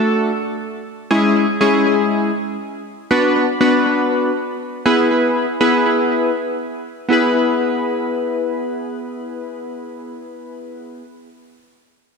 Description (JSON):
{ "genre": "pop", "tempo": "free time", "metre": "none", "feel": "none", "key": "E mixolydian", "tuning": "A4 = 440 Hz", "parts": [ { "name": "warm analog keys", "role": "solo", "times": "0.0-11.1 s", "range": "G#3 to B4", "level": "-16 LUFS", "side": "left 1 dB", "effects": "chorus, tape echo" } ], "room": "wet echo chamber reverb, RT60 1.8 s", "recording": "echo-heavy mix", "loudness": "-15 LUFS", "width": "side -4 dB against mid", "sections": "0.0-7.1 A section; 7.1-11.1 B section", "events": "none", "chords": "0.0 D; 1.1 C#m; 3.1 Bm; 4.9 E", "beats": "free time" }